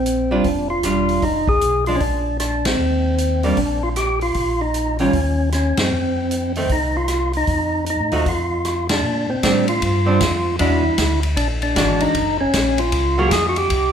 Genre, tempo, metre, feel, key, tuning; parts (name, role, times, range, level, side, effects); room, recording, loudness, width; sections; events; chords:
soul jazz organ trio; 154 BPM; 4/4; swing 64% on 8ths; A4 = 436 Hz
percussive tonewheel organ; melody; 0.0-13.9 s; C4 to Ab4; -20 LUFS; equal; slow rotary speaker, overdrive
mellow tonewheel organ; bass; 0.0-13.9 s; E1 to Bb2; -23 LUFS; left 1 dB; chorus vibrato, slow rotary speaker
vintage drum kit; drums; 0.1-13.8 s; hi-hat, kick drum, ride cymbal, rim click, snare drum; -24 LUFS; equal
archtop guitar, miked and amplified; accompaniment; 0.3-13.3 s; Eb3 to Ab4; -22 LUFS; right 2 dB
moderate recital hall reverb, RT60 1.5 s; recorded in a church or concert hall; -16 LUFS; side -8 dB against mid
0.0-9.0 A section; 9.0-13.9 B section
band accent 2.6, 5.7, 8.8
0.0 Bb6; 1.2 Fm; 2.0 Bb; 2.8 Ebmaj7; 4.4 Bbm; 5.1 Ebm7; 5.9 F7; 8.3 Dm/F; 9.0 Bb69; 10.6 E9; 12.2 Gbmaj7